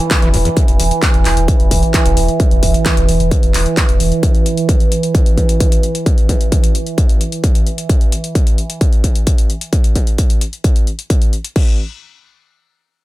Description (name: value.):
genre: driving peak-time techno.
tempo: 131 BPM.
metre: 4/4.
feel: straight.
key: unclear.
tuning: A4 = 438 Hz.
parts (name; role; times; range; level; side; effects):
overtone-sweeping drone; drone; 0.0-7.9 s; E3; -19 LUFS; right 3 dB; chorus, built-in reverb, sidechain pumping.
downlifter; sound effects; 0.0-0.6 s; none; -35 LUFS; left 1 dB; none.
screaming distorted acid line; riff; 0.1-0.5 s; E2 to E3; -22 LUFS; equal; distortion, chorus, sidechain pumping, ping-pong delay.
electronic kick drum; drums; 0.1-11.7 s; none; -12 LUFS; equal; distortion.
punchy analog drum machine; drums; 0.1-11.7 s; crash cymbal, handclaps, hi-hat; -22 LUFS; left 2 dB; sidechain pumping on hats, sidechain pumping on cymbals.
saturated sub bass; bass; 0.2-4.1 s; E1; -16 LUFS; equal; tube saturation, sidechain pumping, low-pass filter.
room: light reverb.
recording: none.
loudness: -11 LUFS.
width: side -17 dB against mid.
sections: 0.0-11.6 A section; 11.6-13.0 B section.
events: none.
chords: none.